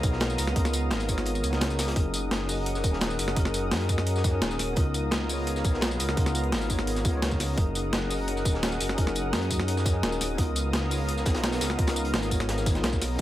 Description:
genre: liquid drum and bass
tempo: 171 BPM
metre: 4/4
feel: straight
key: unclear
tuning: A4 = 439 Hz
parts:
  - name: bell-like tine electric piano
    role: accompaniment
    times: 0.0-13.2 s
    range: B3 to D#5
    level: -33 LUFS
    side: equal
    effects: ping-pong delay
  - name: lush unison pad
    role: sustained chords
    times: 0.0-13.2 s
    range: B3 to D#6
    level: -35 LUFS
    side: equal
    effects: chorus, sidechain pumping
  - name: vibraphone with medium hard mallets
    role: arpeggios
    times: 0.0-13.2 s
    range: D#4 to C#5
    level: -36 LUFS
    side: left 5 dB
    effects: tape echo
  - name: dark detuned saw bass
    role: bass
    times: 0.0-13.2 s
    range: D#1 to F#2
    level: -30 LUFS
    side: equal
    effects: none
  - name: breakbeat sampler-style drum kit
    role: drums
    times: 0.0-13.2 s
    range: hi-hat, snare drum, tambourine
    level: -30 LUFS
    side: equal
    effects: none
  - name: crunchy breakbeat drum kit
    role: drums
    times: 0.0-13.2 s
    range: hi-hat, snare drum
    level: -38 LUFS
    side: equal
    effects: high-pass filter on hats, high-pass filter on snare, high-pass filter on room
  - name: electronic kick drum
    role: drums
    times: 0.0-13.2 s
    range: none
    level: -26 LUFS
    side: equal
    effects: overdrive
room: small room ambience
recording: none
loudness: -24 LUFS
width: side -14 dB against mid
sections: 0.0-13.2 A section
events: drop 0.0-13.2; kick drops out 1.3-2.0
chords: 0.0 C#13; 2.0 F#6; 4.8 C#13; 7.6 F#6; 10.4 C#13

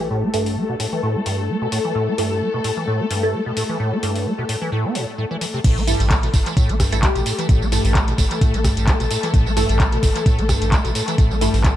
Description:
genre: acid house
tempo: 130 BPM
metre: 4/4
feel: swing 55% on 16ths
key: A minor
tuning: A4 = 440 Hz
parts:
  - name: warm studio string section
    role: sustained chords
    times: 0.0-11.8 s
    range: A3 to A4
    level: -26 LUFS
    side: left 3 dB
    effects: sidechain pumping, low-pass filter
  - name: liquid acid bass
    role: riff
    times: 0.0-11.7 s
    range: G2 to C4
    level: -23 LUFS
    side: equal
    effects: overdrive, wide subtle chorus, sidechain pumping, tape echo
  - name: filtered dub chord stab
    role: stabs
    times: 0.3-11.5 s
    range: A3 to A4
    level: -27 LUFS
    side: right 3 dB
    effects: phaser, analog chorus, tape echo
  - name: booming analog drum machine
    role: drums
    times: 0.3-11.7 s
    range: crash cymbal, handclaps, hi-hat, rim click, tambourine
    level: -25 LUFS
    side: equal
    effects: small room ambience, tape echo
  - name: warm sub bass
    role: bass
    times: 5.6-11.8 s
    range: G1 to A1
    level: -21 LUFS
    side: equal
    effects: sidechain pumping
  - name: electronic kick drum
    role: drums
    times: 5.6-11.7 s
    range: none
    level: -16 LUFS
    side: equal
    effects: small room ambience
  - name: airy dreamy lead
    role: melody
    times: 7.0-7.4 s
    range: G4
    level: -32 LUFS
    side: left 4 dB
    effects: chorus, tape echo
room: light reverb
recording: echo-heavy mix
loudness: -17 LUFS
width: side -12 dB against mid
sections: 0.0-5.6 A section; 5.6-11.8 B section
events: drop 5.6-11.8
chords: 0.0 A5

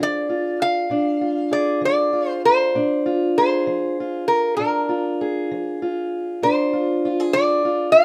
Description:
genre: acoustic country blues, solo or duo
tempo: 65 BPM (dotted quarters)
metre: 12/8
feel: straight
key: unclear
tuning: A4 = 441 Hz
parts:
  - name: metal-body resonator slide guitar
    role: melody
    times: 0.0-8.0 s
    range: Bb4 to F5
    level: -22 LUFS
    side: equal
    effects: none
  - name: fingerpicked steel-string acoustic guitar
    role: accompaniment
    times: 0.0-8.0 s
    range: Bb2 to Ab4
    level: -24 LUFS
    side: equal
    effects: none
room: light reverb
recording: rough home demo mix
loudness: -21 LUFS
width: mono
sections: 0.0-8.0 A section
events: none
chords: 0.0 Bb7

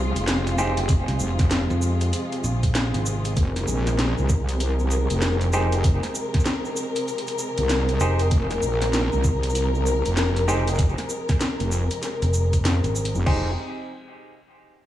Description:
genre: glitch hop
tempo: 97 BPM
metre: 4/4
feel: swing 62% on 16ths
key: F minor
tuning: A4 = 440 Hz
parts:
  - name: dark studio string section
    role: sustained chords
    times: 0.0-13.6 s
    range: C3 to Bb4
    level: -27 LUFS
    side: left 1 dB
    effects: sidechain pumping
  - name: wobble bass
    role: bass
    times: 0.0-13.6 s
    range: F1 to F2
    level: -23 LUFS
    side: equal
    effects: chorus
  - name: drum and bass drum kit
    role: drums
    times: 0.2-13.4 s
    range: crash cymbal, hi-hat, shaker, snare drum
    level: -28 LUFS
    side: equal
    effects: none
  - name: mellow clav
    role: stabs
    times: 0.6-0.8, 5.5-13.5 s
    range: Eb4 to C5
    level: -29 LUFS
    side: right 1 dB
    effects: sidechain pumping, diffuse ambient delay
  - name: electronic kick drum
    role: drums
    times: 0.9-13.4 s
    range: none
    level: -21 LUFS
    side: equal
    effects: none
  - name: fingered electric bass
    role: bass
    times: 1.1-3.4, 8.0-8.3, 12.2-13.1 s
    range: F1 to F2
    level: -23 LUFS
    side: equal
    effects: none
room: light reverb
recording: small room ambience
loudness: -20 LUFS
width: side -13 dB against mid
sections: 0.0-13.3 A section; 13.3-14.9 B section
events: drop 0.0-13.3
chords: 0.0 Fm; 13.3 Fm7

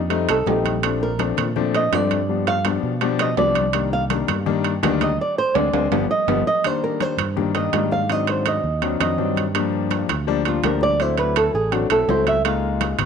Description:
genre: Afro-Cuban jazz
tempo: 165 BPM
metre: 4/4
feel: straight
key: C minor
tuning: A4 = 439 Hz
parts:
  - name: fingered electric bass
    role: bass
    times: 0.0-13.1 s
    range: G1 to B2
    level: -25 LUFS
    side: right 2 dB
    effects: none
  - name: clear concert grand piano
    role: accompaniment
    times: 0.1-13.0 s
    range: Eb3 to F4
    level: -23 LUFS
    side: left 10 dB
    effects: none
  - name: congas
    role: percussion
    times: 0.1-13.1 s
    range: none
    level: -31 LUFS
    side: left 10 dB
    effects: none
  - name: timbales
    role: percussion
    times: 0.1-13.1 s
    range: none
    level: -26 LUFS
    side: right 16 dB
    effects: none
  - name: flamenco guitar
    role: melody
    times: 0.3-13.0 s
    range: F4 to F5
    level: -22 LUFS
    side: right 3 dB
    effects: none
room: light reverb, small room ambience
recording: 1960s-style stereo with parts hard left and right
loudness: -18 LUFS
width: side -6 dB against mid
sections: 0.0-6.6 A section; 6.6-13.1 A section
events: nylon-string guitar solo 0.0-13.1; band accent 5.2-6.6; drum fill 5.6-6.6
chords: 0.1 F9; 0.8 Bbmaj7; 2.3 G7; 3.7 Cm7; 5.2 Csus2; 5.9 G7b13; 6.6 Cm7; 8.1 Ab7#11; 9.6 Gm7; 11.0 D9; 12.4 Db6

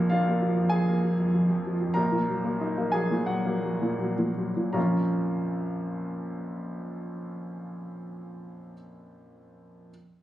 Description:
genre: classical, virtuoso piano study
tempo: 78-102 BPM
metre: 4/4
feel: rubato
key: Bb minor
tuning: A4 = 442 Hz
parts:
  - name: warm grand piano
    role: solo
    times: 0.0-9.9 s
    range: Bb1 to Bb5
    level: -26 LUFS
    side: equal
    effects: none
room: wet recital hall reverb, RT60 1.4 s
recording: recorded on a phone in the room, club reverb, compression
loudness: -25 LUFS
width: side -14 dB against mid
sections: 0.0-4.8 A section; 4.8-7.7 B section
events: slowing down 0.0-4.8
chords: 0.0 Bb7; 2.0 Ebm/Bb; 4.8 Bbm

